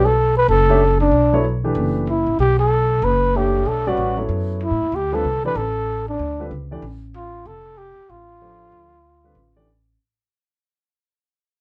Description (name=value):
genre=modal jazz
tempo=189 BPM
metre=4/4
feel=swing 63% on 8ths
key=unclear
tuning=A4 = 439 Hz
part: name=breathy trumpet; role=melody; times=0.0-9.7 s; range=D4 to B4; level=-21 LUFS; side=equal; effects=none
part: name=warm grand piano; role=accompaniment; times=0.0-9.7 s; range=D3 to E5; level=-26 LUFS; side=equal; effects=none
part: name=upright bass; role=bass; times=0.0-10.0 s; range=F1 to A2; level=-24 LUFS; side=equal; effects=none
room=light reverb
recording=none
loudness=-19 LUFS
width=mono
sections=0.0-10.0 A section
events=fade-out 0.0-10.0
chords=0.0 Bm11; 4.9 Dm11